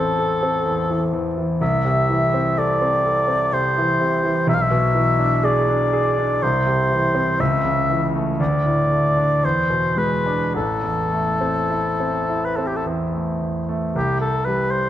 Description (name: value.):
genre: classical, romantic duo for oboe and grand piano.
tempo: 51-64 BPM.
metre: 3/4.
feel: rubato.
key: A minor.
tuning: A4 = 440 Hz.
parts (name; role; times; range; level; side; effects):
warm oboe; melody; 0.0-14.9 s; G4 to F5; -20 LUFS; left 1 dB; none.
bright concert grand piano; accompaniment; 0.0-14.9 s; A1 to A4; -20 LUFS; equal; none.
room: wet recital hall reverb, RT60 1.5 s.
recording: none.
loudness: -17 LUFS.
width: side -12 dB against mid.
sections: 0.0-14.0 A section.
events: none.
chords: 0.0 Am; 1.6 Am/C; 4.5 E7/B; 6.4 C; 7.4 A/C#; 8.4 D5; 9.4 E7; 10.5 Am; 14.0 C5.